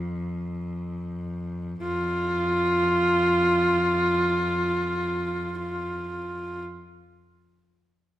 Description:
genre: mongolian traditional, Mongolian folk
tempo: free time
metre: none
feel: none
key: unclear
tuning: A4 = 440 Hz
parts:
  - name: clear cello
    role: drone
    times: 0.0-6.6 s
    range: F2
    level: -31 LUFS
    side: left 1 dB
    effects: none
  - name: bright horsehead fiddle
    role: melody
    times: 1.8-6.6 s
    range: F4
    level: -23 LUFS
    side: right 1 dB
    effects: none
room: wet recital hall reverb, RT60 1.5 s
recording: none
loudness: -23 LUFS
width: side -13 dB against mid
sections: 0.0-1.8 A section; 1.8-6.4 B section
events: slowing down 0.0-1.8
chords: none

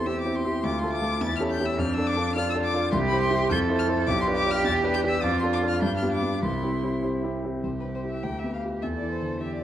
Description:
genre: quick classical-period movement for piano trio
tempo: 104 BPM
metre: 2/4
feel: straight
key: C major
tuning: A4 = 439 Hz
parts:
  - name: rich violin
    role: melody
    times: 0.0-9.6 s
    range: B4 to A6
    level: -31 LUFS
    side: left 3 dB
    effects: none
  - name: rich cello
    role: second line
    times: 0.0-9.6 s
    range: D4 to A4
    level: -29 LUFS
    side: right 4 dB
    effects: none
  - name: warm concert grand piano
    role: accompaniment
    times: 0.0-9.6 s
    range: B1 to C5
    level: -26 LUFS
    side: left 1 dB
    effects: none
room: wet recital hall reverb, RT60 1.4 s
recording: worn, warbling old tape, cassette tape, warbly pitch drift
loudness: -23 LUFS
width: side -11 dB against mid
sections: 0.0-7.6 A section; 7.6-9.6 A section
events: none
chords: 0.0 C; 0.6 Dm; 1.2 A7/E; 1.8 Dm/F; 2.9 C; 3.5 Fmaj7; 4.1 Bdim; 4.7 Em7; 5.2 Dm/F; 5.8 G7; 6.4 C; 8.2 G7/D; 8.8 C/E

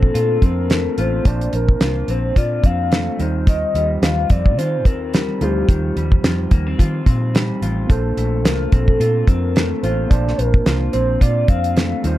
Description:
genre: indie pop, bedroom pop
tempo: 108 BPM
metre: 4/4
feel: swing 55% on 16ths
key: Bb major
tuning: A4 = 440 Hz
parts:
  - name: warbly nostalgic lead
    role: melody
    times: 0.0-12.0 s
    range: G4 to F5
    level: -22 LUFS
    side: left 2 dB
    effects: wide subtle chorus, analog delay, plate reverb
  - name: electric guitar through a small old amp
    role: accompaniment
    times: 0.0-12.2 s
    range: Bb2 to F4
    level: -26 LUFS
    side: left 2 dB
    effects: wide subtle chorus, warbly pitch drift, plate reverb
  - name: overdriven tine electric piano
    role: accompaniment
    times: 0.0-12.2 s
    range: F3 to A5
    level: -27 LUFS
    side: right 3 dB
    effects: cassette tape, plate reverb
  - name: vintage muted fingered electric bass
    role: bass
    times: 0.0-12.2 s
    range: A1 to Eb3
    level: -21 LUFS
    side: equal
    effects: none
  - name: damped 70s drum kit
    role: drums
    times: 0.0-12.2 s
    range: hi-hat, kick drum, snare drum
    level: -16 LUFS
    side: equal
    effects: none
room: light reverb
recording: dark, warm production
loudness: -15 LUFS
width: side -15 dB against mid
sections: 0.0-12.2 A section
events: none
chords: 0.0 Bbmaj9; 3.2 Eb69; 7.9 Bbmaj9

